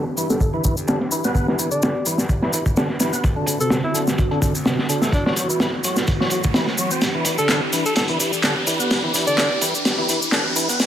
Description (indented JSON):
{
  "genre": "breakbeat, breaks",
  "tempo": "127 BPM",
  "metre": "4/4",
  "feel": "swing 54% on 16ths",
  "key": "E minor",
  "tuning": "A4 = 435 Hz",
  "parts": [
    { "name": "phased analog pad", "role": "sustained chords", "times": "0.0-10.9 s", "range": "D3 to G4", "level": "-27 LUFS", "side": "equal", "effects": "phaser, chorus, sidechain pumping" },
    { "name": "percussive tonewheel organ", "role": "riff", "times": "0.0-10.8 s", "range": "C3 to C4", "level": "-25 LUFS", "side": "equal", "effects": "overdrive, fast rotary speaker, tube saturation, low-pass filter, dub echo" },
    { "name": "riser", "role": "sound effects", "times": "2.7-10.9 s", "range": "none", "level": "-28 LUFS", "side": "right 1 dB", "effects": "none" },
    { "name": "overdriven picked electric bass", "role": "bass", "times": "0.2-10.9 s", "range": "E1 to A2", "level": "-39 LUFS", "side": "equal", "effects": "none" },
    { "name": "crunchy breakbeat drum kit", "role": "drums", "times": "0.2-10.9 s", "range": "hi-hat, kick drum, snare drum", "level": "-21 LUFS", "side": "equal", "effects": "low-pass filter on kick, low-pass filter on hats, low-pass filter on snare, low-pass filter on room" },
    { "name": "electronic shaker and handclaps", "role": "drums", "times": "0.2-10.9 s", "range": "none", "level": "-25 LUFS", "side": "left 1 dB", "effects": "none" },
    { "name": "clear alto saxophone", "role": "melody", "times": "0.3-9.6 s", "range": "D4 to D5", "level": "-27 LUFS", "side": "equal", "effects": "old record sound, low-pass filter, dub echo" }
  ],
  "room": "light reverb",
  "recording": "high-pass filter",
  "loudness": "-17 LUFS",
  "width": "side -10 dB against mid",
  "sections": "0.0-10.9 A section",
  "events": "build-up 0.0-10.9; filter sweep on drum 0.0-10.9; filter sweep on analog synth pad 0.0-10.9; filter sweep on alto saxophone 0.0-10.9; filter sweep 0.0-10.9; riser 2.7-10.9; drum fill 7.0-10.9",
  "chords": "0.0 Em7; 3.2 D7; 5.1 F#m7b5; 7.0 Em7",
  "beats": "0.41 0.88 | 1.35 1.82 2.30 2.77 | 3.24 3.71 4.19 4.66 | 5.13 5.61 6.08 6.55 | 7.02 7.50 7.97 8.44 | 8.91 9.38 9.86 10.33 | 10.80"
}